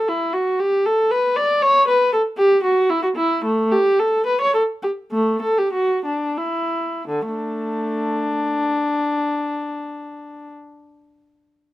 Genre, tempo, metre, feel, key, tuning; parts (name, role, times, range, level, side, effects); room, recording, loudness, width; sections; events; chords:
classical, baroque-style suite movement for unaccompanied viola; 82-120 BPM; 3/4; rubato; D major; A4 = 443 Hz
dark viola; solo; 0.0-10.5 s; D3 to D5; -18 LUFS; equal
light reverb; -17 LUFS; side -15 dB against mid
0.0-7.1 A section; 7.1-11.1 B section
slowing down 2.6-7.1